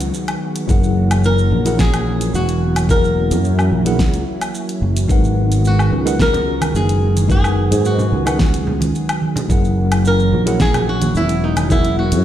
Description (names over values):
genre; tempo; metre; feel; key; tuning
sunset chillout; 109 BPM; 4/4; straight; unclear; A4 = 440 Hz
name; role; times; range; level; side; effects
flamenco guitar; melody; 0.0-12.2 s; D#4 to A#4; -21 LUFS; equal; tape echo
lush unison pad; sustained chords; 0.0-12.2 s; D#3 to G#4; -23 LUFS; equal; chorus
sustaining fretless electric bass; bass; 0.0-12.2 s; E1 to G#2; -17 LUFS; equal; ensemble chorus
smooth R&B drum kit; drums; 0.0-12.2 s; hi-hat, shaker, snare drum, woodblock; -24 LUFS; left 1 dB; none
downlifter; sound effects; 0.0-0.7 s; none; -40 LUFS; equal; none
mellow tine electric piano; accompaniment; 0.7-12.2 s; F#3 to F#5; -23 LUFS; moving between left 4 dB and right 4 dB; medium stereo tremolo, auto-pan, tape echo
electronic kick drum; drums; 0.7-11.8 s; none; -16 LUFS; equal; none
congas; percussion; 6.3-11.7 s; none; -24 LUFS; right 3 dB; none
room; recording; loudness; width
light reverb, digital ambience; played on a big sound system in a bare room, stone room reverb; -14 LUFS; side -11 dB against mid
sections
0.0-12.2 A section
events
none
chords
0.0 G#m7; 0.7 F#7; 5.1 G#m7; 9.5 F#7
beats
0.14 | 0.69 1.24 1.79 2.34 | 2.89 3.44 3.99 4.54 | 5.09 5.64 6.19 6.75 | 7.29 7.85 8.40 8.95 | 9.50 10.05 10.60 11.15 | 11.70